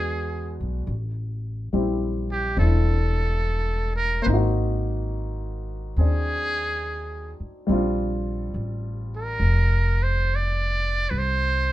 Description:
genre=jazz ballad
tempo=71 BPM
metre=4/4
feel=swing 66% on 8ths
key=unclear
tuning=A4 = 440 Hz
part: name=trumpet with metal mute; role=melody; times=0.0-11.7 s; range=G4 to D5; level=-26 LUFS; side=right 2 dB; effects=none
part: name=warm baby grand piano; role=accompaniment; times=0.0-11.1 s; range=G3 to G4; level=-28 LUFS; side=left 1 dB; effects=none
part: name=upright bass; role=bass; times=0.0-11.7 s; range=E1 to E2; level=-24 LUFS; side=equal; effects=none
room=light reverb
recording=minimal, uncompressed stereo recording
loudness=-22 LUFS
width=side -15 dB against mid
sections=0.0-11.7 A section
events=none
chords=0.0 E7; 0.9 Am7; 4.3 Ab9; 7.7 Bb69; 11.1 N.C.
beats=0.04 | 0.88 1.73 2.58 3.42 | 4.27 5.12 5.97 6.83 | 7.69 8.54 9.39 10.24 | 11.09

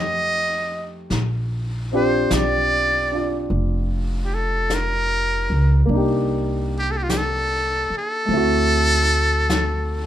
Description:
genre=jazz ballad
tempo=50 BPM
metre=4/4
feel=swing 68% on 8ths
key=Bb major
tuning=A4 = 441 Hz
part: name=trumpet with metal mute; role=melody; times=0.0-10.1 s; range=F4 to Eb5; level=-21 LUFS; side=equal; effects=none
part: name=warm upright piano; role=accompaniment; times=0.0-10.1 s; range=A3 to G4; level=-25 LUFS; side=equal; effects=none
part: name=upright bass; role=bass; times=0.0-10.1 s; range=F1 to F2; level=-23 LUFS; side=equal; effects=none
part: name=vintage brush drum kit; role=drums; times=1.1-10.1 s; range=brushed snare drum, hi-hat, snare drum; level=-29 LUFS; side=left 2 dB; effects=none
room=light reverb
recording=minimal, uncompressed stereo recording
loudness=-18 LUFS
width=side -11 dB against mid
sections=0.0-10.1 A section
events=none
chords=0.0 F9; 1.1 Bb6; 5.9 Cm7; 8.3 D7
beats=| 1.10 2.30 3.50 4.70 | 5.90 7.09 8.29 9.50

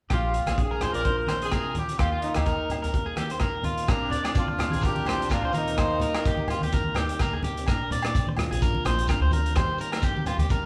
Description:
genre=highlife guitar band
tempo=127 BPM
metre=4/4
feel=swing 55% on 16ths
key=Bb mixolydian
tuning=A4 = 439 Hz
part: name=clear horn section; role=melody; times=0.1-6.5 s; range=D4 to Bb4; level=-32 LUFS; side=equal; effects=none
part: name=fingerpicked plugged-in steel-string acoustic guitar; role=accompaniment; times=0.1-10.7 s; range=Bb2 to Bb4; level=-38 LUFS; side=equal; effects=none
part: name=electric guitar at the edge of break-up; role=arpeggios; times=0.1-10.7 s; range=F4 to D5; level=-33 LUFS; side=equal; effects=none
part: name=upright bass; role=bass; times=0.1-10.7 s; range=Bb1 to Eb3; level=-33 LUFS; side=equal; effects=none
part: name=crunchy breakbeat drum kit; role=drums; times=0.1-10.6 s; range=hi-hat, kick drum, rim click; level=-31 LUFS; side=equal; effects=none
part: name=agogo bells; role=percussion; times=0.1-10.4 s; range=none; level=-41 LUFS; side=equal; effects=none
part: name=congas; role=percussion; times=0.5-10.7 s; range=none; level=-36 LUFS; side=equal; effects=none
part: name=warm alto saxophone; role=second line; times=3.9-6.5 s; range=Bb3 to D4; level=-39 LUFS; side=equal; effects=none
part: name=shekere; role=percussion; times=3.9-10.6 s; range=none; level=-38 LUFS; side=equal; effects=none
room=moderate large studio reverb, RT60 1.1 s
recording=band playing live in one room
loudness=-26 LUFS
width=mono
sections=0.1-3.9 A section; 3.9-10.7 B section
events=none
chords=0.1 Bbadd9; 2.0 Eb; 3.9 Bbadd9; 5.8 Eb; 7.7 Bbadd9; 9.6 Eb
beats=| 0.10 0.57 1.05 1.52 | 2.00 2.47 2.94 3.42 | 3.89 4.36 4.84 5.31 | 5.78 6.25 6.72 7.20 | 7.67 8.14 8.61 9.09 | 9.56 10.03 10.50

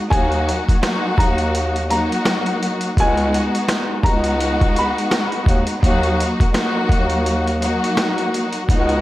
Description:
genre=hip hop, boom-bap hip-hop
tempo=84 BPM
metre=4/4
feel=swing 58% on 16ths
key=Eb minor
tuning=A4 = 439 Hz
part: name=warm upright piano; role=melody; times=0.1-5.0 s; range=Ab5 to Cb6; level=-24 LUFS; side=equal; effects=tape echo
part: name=dark studio string section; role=accompaniment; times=0.1-9.0 s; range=Gb3 to Gb4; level=-20 LUFS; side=left 1 dB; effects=none
part: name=warm bass clarinet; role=bass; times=0.1-9.0 s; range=Db2 to Eb2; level=-20 LUFS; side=equal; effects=none
part: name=boom bap sampler-style drum kit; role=drums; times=0.1-9.0 s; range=hi-hat, kick drum, snare drum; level=-20 LUFS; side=equal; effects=none
room=small room ambience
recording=vinyl crackle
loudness=-16 LUFS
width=side -16 dB against mid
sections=0.0-9.0 A section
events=none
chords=0.1 Ebm; 3.0 Db7sus4; 5.8 Ebm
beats=| 0.11 0.83 1.54 2.26 | 2.97 3.69 4.40 5.11 | 5.83 6.54 7.26 7.97 | 8.69

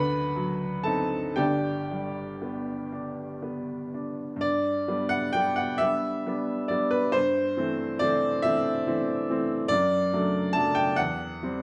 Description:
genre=classical, romantic nocturne for solo piano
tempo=37-48 BPM (dotted quarters)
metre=6/8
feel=rubato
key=G major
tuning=A4 = 440 Hz
part: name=clear upright piano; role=solo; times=0.0-11.6 s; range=G1 to B5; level=-27 LUFS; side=equal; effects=none
room=wet large studio reverb, RT60 1.3 s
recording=none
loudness=-27 LUFS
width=mono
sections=0.0-4.4 A section; 4.4-11.6 B section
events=none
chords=0.0 D7b9; 1.4 G; 7.1 Am7/G; 9.7 D/F#; 11.0 C/E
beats=| 1.39 2.93 | 4.42 5.81 | 7.15 8.44 | 9.70 10.98

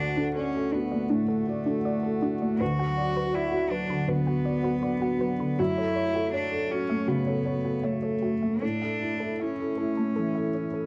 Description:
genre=neoclassical piano and strings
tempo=80 BPM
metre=4/4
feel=rubato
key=D major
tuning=A4 = 440 Hz
part: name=rich cello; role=second line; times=0.0-10.9 s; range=A3 to F#4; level=-32 LUFS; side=equal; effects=none
part: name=felt-muted upright piano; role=accompaniment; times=0.0-10.9 s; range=D2 to D5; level=-31 LUFS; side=equal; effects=none
part: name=hollow soft pad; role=sustained chords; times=0.0-10.9 s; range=F#3 to F#5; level=-38 LUFS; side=equal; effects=chorus
part: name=soft round pluck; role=arpeggios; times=0.2-10.9 s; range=D4 to B5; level=-37 LUFS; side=equal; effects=chorus, tape echo
room=studio reverb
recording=dry, close 1970s-style studio recording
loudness=-27 LUFS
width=mono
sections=0.0-10.9 A section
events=none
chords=0.0 D; 2.6 Bm/D; 5.6 F#m7; 8.6 A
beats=0.36 1.10 1.84 | 2.60 3.35 4.08 4.82 | 5.59 6.33 7.08 7.83 | 8.62 9.39 10.16

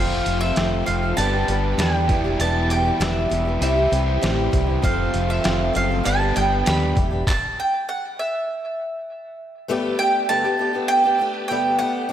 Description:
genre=folk rock and heartland rock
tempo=99 BPM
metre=4/4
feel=straight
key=G major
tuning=A4 = 439 Hz
part: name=mandolin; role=melody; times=0.0-12.1 s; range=E5 to B5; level=-22 LUFS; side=right 2 dB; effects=tape echo
part: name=picked swing-style acoustic guitar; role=accompaniment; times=0.0-12.1 s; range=G2 to B4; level=-26 LUFS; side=left 3 dB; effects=none
part: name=warm concert grand piano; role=accompaniment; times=0.0-7.2 s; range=E4 to E5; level=-32 LUFS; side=right 9 dB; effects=slapback echo
part: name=bright tonewheel organ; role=sustained chords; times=0.0-12.1 s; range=B3 to D5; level=-35 LUFS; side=right 1 dB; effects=none
part: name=overdriven electric guitar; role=riff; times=0.0-7.0 s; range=E2 to G4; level=-26 LUFS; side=equal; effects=spring reverb
part: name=fingered electric bass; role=bass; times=0.0-7.2 s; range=E1 to E2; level=-23 LUFS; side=equal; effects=none
part: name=trip hop sampler-style drum kit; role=drums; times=0.3-7.4 s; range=handclaps, hi-hat, kick drum, snare drum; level=-25 LUFS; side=equal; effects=none
room=moderate lush hall reverb, RT60 2.1 s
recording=big arena sound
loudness=-18 LUFS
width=side -10 dB against mid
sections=0.0-9.7 A section; 9.7-12.1 B section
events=stop 7.3-9.7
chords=0.0 F; 1.2 G; 2.1 Em7; 3.6 C; 4.8 F; 6.1 G; 7.0 Em7; 8.5 N.C.; 9.7 Gadd9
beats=0.56 1.17 1.79 | 2.40 3.01 3.62 4.23 | 4.84 5.45 6.06 6.67 | 7.27 7.88 8.48 9.09 | 9.69 10.30 10.90 11.50 | 12.10

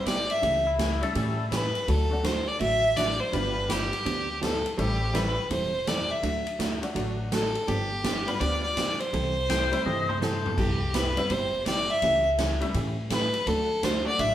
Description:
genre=country, western swing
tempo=166 BPM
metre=4/4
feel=swing 64% on 8ths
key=C major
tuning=A4 = 440 Hz
part: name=clear fiddle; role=melody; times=0.0-14.3 s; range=G4 to E5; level=-27 LUFS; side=equal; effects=none
part: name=honky-tonk upright piano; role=accompaniment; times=0.0-14.2 s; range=F#3 to F#4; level=-35 LUFS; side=left 2 dB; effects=none
part: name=upright bass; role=bass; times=0.0-14.3 s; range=E1 to A2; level=-31 LUFS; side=equal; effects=none
part: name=hollow-body jazz guitar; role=accompaniment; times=0.1-14.3 s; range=C3 to A4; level=-32 LUFS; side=right 3 dB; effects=none
part: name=swinging big-band drum kit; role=drums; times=0.1-14.3 s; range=crash cymbal, hi-hat, kick drum, ride cymbal, snare drum, toms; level=-33 LUFS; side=equal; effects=none
part: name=pedal steel guitar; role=second line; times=0.7-1.4, 9.5-10.5 s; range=E4 to G5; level=-32 LUFS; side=left 5 dB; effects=none
room=wet large studio reverb, RT60 1.3 s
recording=band playing live in one room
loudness=-24 LUFS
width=side -12 dB against mid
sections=0.0-10.6 A section; 10.6-14.3 A section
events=drum fill 9.9-10.6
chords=0.4 A7/C#; 1.9 D; 3.3 G7; 4.8 Am7; 6.2 D; 7.7 G7; 9.1 C6; 10.6 Cmaj7; 12.0 A7/C#; 13.5 D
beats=0.06 | 0.43 0.79 1.15 1.52 | 1.88 2.24 2.60 2.97 | 3.33 3.69 4.06 4.42 | 4.78 5.14 5.51 5.87 | 6.23 6.59 6.96 7.32 | 7.68 8.04 8.40 8.77 | 9.13 9.49 9.85 10.21 | 10.57 10.94 11.30 11.66 | 12.02 12.38 12.74 13.11 | 13.47 13.83 14.19

